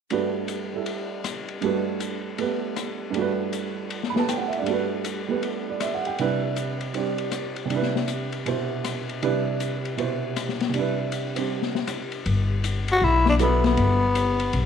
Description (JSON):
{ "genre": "modal jazz", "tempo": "158 BPM", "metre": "4/4", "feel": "swing 64% on 8ths", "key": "G major", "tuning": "A4 = 440 Hz", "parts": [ { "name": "warm upright piano", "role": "accompaniment", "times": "0.1-14.0 s", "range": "G2 to B5", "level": "-26 LUFS", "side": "right 6 dB", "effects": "none" }, { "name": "open jazz drum kit", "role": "drums", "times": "0.1-14.6 s", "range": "hi-hat, ride cymbal, rim click, snare drum", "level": "-30 LUFS", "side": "left 8 dB", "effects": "none" }, { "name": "upright bass", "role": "bass", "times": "12.3-14.7 s", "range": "G1 to B1", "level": "-22 LUFS", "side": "left 2 dB", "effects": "none" }, { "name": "growling tenor saxophone", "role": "melody", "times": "12.9-14.7 s", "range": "B3 to F#4", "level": "-21 LUFS", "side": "left 2 dB", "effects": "none" } ], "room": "moderate echo chamber reverb, RT60 1.4 s, studio ambience", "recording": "1960s-style stereo with parts hard left and right", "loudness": "-23 LUFS", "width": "side -7 dB against mid", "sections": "0.1-12.3 A section; 12.3-14.7 B section", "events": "none", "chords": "0.1 Gmaj9; 6.2 Cmaj9; 12.3 Gmaj9" }